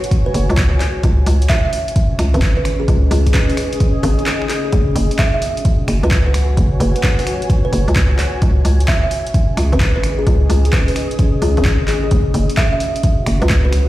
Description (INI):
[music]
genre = UK garage, two-step garage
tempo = 130 BPM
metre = 4/4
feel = swing 67% on 16ths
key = unclear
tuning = A4 = 441 Hz
[part]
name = punchy analog drum machine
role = drums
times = 0.0-13.8 s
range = finger snaps, handclaps, hi-hat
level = -23 LUFS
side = equal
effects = overdrive
[part]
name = granular cloud pad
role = texture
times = 0.0-13.9 s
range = C#4 to G#5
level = -25 LUFS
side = equal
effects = built-in reverb, sidechain pumping
[part]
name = electronic kick drum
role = drums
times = 0.1-13.6 s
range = none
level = -16 LUFS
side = equal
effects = overdrive
[part]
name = kalimba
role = melody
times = 0.3-13.8 s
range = G#4 to E5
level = -23 LUFS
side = equal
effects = tape echo
[part]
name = hollow knocking FM bass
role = bass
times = 0.3-13.9 s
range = F#1 to C#2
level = -15 LUFS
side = equal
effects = sidechain pumping
[sound]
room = little or no reverb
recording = played on a big sound system in a bare room, large studio reverb, vinyl crackle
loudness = -13 LUFS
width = side -16 dB against mid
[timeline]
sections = 0.0-13.9 A section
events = break 4.3-4.7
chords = 0.0 F#5; 0.8 C#5; 4.7 F#5; 8.2 C#5; 12.1 F#5